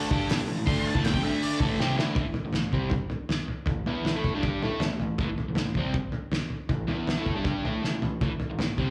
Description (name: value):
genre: garage rock duo or trio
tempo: 159 BPM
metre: 4/4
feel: straight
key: unclear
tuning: A4 = 440 Hz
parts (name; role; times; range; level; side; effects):
- octave-fuzz lead guitar; melody; 0.0-2.2 s; E4 to C6; -36 LUFS; equal; distortion, slapback echo
- crunchy overdriven guitar; riff; 0.0-8.9 s; A2 to A4; -31 LUFS; equal; slapback echo
- cloth-damped thuddy drum kit; drums; 0.1-8.9 s; hi-hat, kick drum, snare drum, toms; -30 LUFS; equal; none
room: light reverb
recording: live gig heard through the venue's PA, club reverb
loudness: -28 LUFS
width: mono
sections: 0.0-2.2 A section; 2.2-8.9 B section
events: lead electric guitar solo 0.0-2.2; drum fill 1.8-2.2, 7.8-8.2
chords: 0.1 A5; 1.2 D5; 1.6 A5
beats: 0.30 | 0.68 1.05 1.43 1.80 | 2.17 2.55 2.93 3.30 | 3.68 4.06 4.44 4.82 | 5.19 5.57 5.95 6.33 | 6.71 7.09 7.46 7.84 | 8.22 8.60